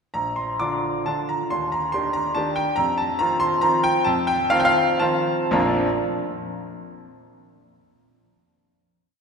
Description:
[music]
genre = classical, piano waltz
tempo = 108-146 BPM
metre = 3/4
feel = rubato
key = Bb major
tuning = A4 = 440 Hz
[part]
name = bright grand piano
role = solo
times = 0.1-5.9 s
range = Bb1 to D6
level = -20 LUFS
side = equal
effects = none
[sound]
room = wet church reverb, RT60 2.9 s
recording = none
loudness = -19 LUFS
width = side -5 dB against mid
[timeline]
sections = 0.1-5.5 A section; 5.5-6.9 final chord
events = none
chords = 0.1 Bb; 1.5 Ebmaj7; 2.8 F5; 5.5 Bb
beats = | 0.15 0.60 1.06 | 1.51 1.93 2.35 | 2.77 3.19 3.62 | 4.06 4.51 5.00 | 5.53

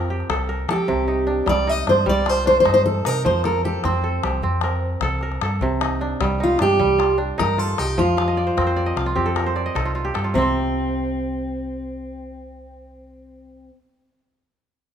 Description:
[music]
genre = west african traditional, West African string and xylophone music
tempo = 102 BPM (dotted quarters)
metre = 12/8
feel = straight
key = C dorian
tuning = A4 = 440 Hz
[part]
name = fingerpicked steel-string acoustic guitar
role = melody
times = 0.0-13.7 s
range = C4 to Eb5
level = -20 LUFS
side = equal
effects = none
[part]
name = kora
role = arpeggios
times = 0.0-13.8 s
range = C3 to F5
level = -25 LUFS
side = right 2 dB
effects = none
[part]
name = hollow-body short-scale fingered electric bass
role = bass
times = 0.0-13.7 s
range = C2 to F3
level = -25 LUFS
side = equal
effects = none
[part]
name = calabash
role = percussion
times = 0.2-10.5 s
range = none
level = -28 LUFS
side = left 6 dB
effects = none
[sound]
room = moderate recital hall reverb, RT60 1.4 s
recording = minimal, uncompressed stereo recording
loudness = -18 LUFS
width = side -8 dB against mid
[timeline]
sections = 0.0-10.3 A section; 10.3-12.7 B section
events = kora fill 8.2-10.3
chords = 0.0 F; 0.9 Cm; 3.2 F; 5.6 Cm; 10.3 Csus4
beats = 0.30 | 0.89 1.48 2.07 2.66 | 3.25 3.84 4.43 5.02 | 5.61 6.20 6.79 7.39 | 7.98 8.57 9.16 9.75 | 10.35 10.94 11.53 12.12

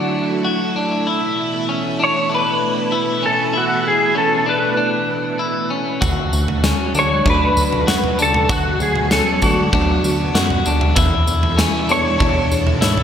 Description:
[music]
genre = dream pop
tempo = 97 BPM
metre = 4/4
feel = straight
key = D major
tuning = A4 = 440 Hz
[part]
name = clean lap steel guitar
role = melody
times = 0.0-13.0 s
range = F#4 to C#5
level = -19 LUFS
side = equal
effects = ensemble chorus, digital delay
[part]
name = string machine, full ensemble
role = sustained chords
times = 0.0-13.0 s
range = B2 to A4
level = -23 LUFS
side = right 1 dB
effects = ensemble chorus
[part]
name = clean electric guitar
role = arpeggios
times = 0.0-13.0 s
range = C#4 to F#4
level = -21 LUFS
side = left 3 dB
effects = lush chorus, digital delay
[part]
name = chorused synth bass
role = bass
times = 6.0-13.0 s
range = C#2 to G#2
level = -21 LUFS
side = equal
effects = none
[part]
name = huge arena drum kit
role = drums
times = 6.0-13.0 s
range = kick drum, snare drum, tambourine, toms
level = -19 LUFS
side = equal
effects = gated reverb
[sound]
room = moderate lush hall reverb, RT60 1.8 s, small room ambience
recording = bright 1980s-style digital production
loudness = -15 LUFS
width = side -8 dB against mid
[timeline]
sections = 0.0-13.0 A section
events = none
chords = 0.0 D; 1.1 Esus4; 6.0 D; 11.0 Esus4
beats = 0.45 | 1.07 1.69 2.31 2.93 | 3.54 4.16 4.78 5.40 | 6.02 6.64 7.26 7.87 | 8.49 9.11 9.73 10.35 | 10.97 11.59 12.20 12.82

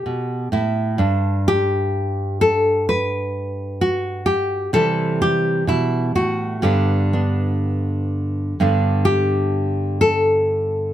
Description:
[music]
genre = folk, solo fingerstyle acoustic guitar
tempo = 64 BPM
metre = 4/4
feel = rubato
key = G major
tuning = A4 = 440 Hz
[part]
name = nylon-string guitar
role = solo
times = 0.0-10.9 s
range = G2 to B4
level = -17 LUFS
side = equal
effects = none
[sound]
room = light reverb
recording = close, detailed microphones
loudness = -17 LUFS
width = side -12 dB against mid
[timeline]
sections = 0.0-8.6 A section; 8.6-10.9 A section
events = none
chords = 0.0 C (rootless); 1.0 G; 4.7 C; 6.6 G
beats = 0.05 | 0.99 1.93 2.86 3.80 | 4.73 5.67 6.62 7.61 | 8.58 9.54 10.50

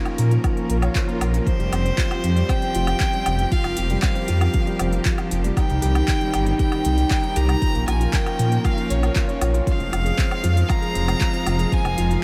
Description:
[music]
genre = piano and strings electronica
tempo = 117 BPM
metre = 4/4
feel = straight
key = F minor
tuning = A4 = 440 Hz
[part]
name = rich string quartet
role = sustained chords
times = 0.0-12.2 s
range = Eb3 to F5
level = -32 LUFS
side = equal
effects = sidechain pumping, shimmer reverb
[part]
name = felt-muted upright piano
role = riff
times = 0.0-12.2 s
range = Eb3 to Db5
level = -29 LUFS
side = equal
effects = delay, shimmer reverb
[part]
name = deep house drum kit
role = drums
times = 0.1-12.2 s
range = handclaps, hi-hat, woodblock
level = -33 LUFS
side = equal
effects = studio reverb
[part]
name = dark detuned saw bass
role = bass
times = 0.2-12.2 s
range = F1 to Bb2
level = -23 LUFS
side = equal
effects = sidechain pumping
[part]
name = electronic kick drum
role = drums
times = 0.4-11.8 s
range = none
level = -24 LUFS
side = equal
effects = studio reverb
[part]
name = swell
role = sound effects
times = 0.7-1.5 s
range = none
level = -44 LUFS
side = equal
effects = none
[part]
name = rich violin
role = melody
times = 1.5-12.2 s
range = C5 to Bb5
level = -30 LUFS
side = equal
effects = delay, shimmer reverb
[sound]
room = moderate cathedral reverb, RT60 6.8 s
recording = dreamy mix soaked in reverb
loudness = -21 LUFS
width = mono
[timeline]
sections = 0.0-12.2 A section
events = swell 0.7-1.5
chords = 0.0 Bbm; 1.5 Fsus2; 5.6 Cm; 7.6 Bbm; 9.7 Fm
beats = 0.44 0.95 | 1.47 1.98 2.49 3.00 | 3.52 4.03 4.54 5.06 | 5.57 6.08 6.59 7.11 | 7.62 8.13 8.65 9.16 | 9.67 10.19 10.70 11.21 | 11.72 12.24

